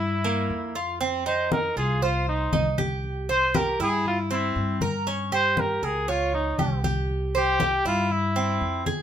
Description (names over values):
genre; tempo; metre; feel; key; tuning
latin, Cuban son and guajira; 118 BPM; 4/4; straight; F minor; A4 = 440 Hz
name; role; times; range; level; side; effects
warm trumpet; melody; 0.0-8.9 s; Eb4 to C5; -25 LUFS; equal; none
Cuban tres; arpeggios; 0.0-9.0 s; Bb3 to Db5; -27 LUFS; right 3 dB; none
upright bass; bass; 0.0-9.0 s; C2 to G2; -29 LUFS; left 1 dB; none
congas; percussion; 0.2-9.0 s; none; -30 LUFS; left 4 dB; none
room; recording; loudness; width
light reverb; minimal, uncompressed stereo recording; -22 LUFS; side -9 dB against mid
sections
0.0-1.0 A section; 1.0-9.0 A section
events
none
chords
0.0 C7 (rootless); 1.0 F5; 3.0 C; 5.1 Gdim; 7.1 C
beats
0.50 | 1.01 1.51 2.02 2.53 | 3.04 3.54 4.05 4.56 | 5.07 5.57 6.08 6.59 | 7.09 7.60 8.11 8.61